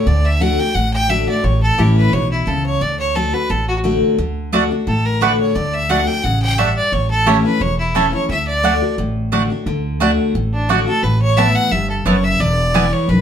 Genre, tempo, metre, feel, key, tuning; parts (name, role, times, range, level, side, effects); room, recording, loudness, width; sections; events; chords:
bluegrass; 175 BPM; 4/4; straight; D major; A4 = 440 Hz
clear fiddle; melody; 0.0-13.2 s; D4 to G5; -19 LUFS; equal
picked steel-string acoustic guitar; accompaniment; 0.0-13.2 s; E2 to F#4; -19 LUFS; left 2 dB
upright bass; bass; 0.1-13.2 s; E1 to D2; -19 LUFS; equal
mandolin; stabs; 4.5-12.8 s; A3 to A5; -18 LUFS; right 6 dB
wet small room reverb, RT60 0.6 s; band playing live in one room; -14 LUFS; side -8 dB against mid
0.0-9.7 A section; 9.7-13.2 B section
0.0 D; 1.4 A; 2.8 D; 6.9 A; 8.3 D; 11.0 Asus2; 12.4 E